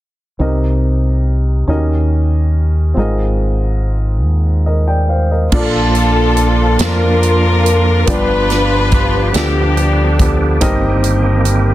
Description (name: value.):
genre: slow gospel.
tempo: 47 BPM (dotted quarters).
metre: 6/8.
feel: straight.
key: Bb major.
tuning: A4 = 440 Hz.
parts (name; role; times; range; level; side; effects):
warm upright piano; accompaniment; 0.4-11.7 s; G2 to A5; -19 LUFS; equal; none.
deep dub fingered electric bass; bass; 0.4-11.7 s; G1 to F2; -14 LUFS; equal; none.
warm chamber string section; melody; 5.5-10.6 s; B3 to B4; -16 LUFS; left 2 dB; none.
bright tonewheel organ; sustained chords; 5.5-11.7 s; Eb3 to G4; -21 LUFS; right 4 dB; fast rotary speaker, chorus vibrato.
natural country drum kit; drums; 5.5-11.7 s; crash cymbal, hi-hat, kick drum, snare drum; -18 LUFS; equal; none.
room: little or no reverb.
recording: dense, heavily limited modern master.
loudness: -11 LUFS.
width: side -14 dB against mid.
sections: 0.4-5.5 A section; 5.5-11.7 B section.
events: none.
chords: 0.4 Cm7; 1.7 Eb7; 3.0 Ab69; 5.5 Bbmaj7; 8.1 G7; 10.6 Cm7/G.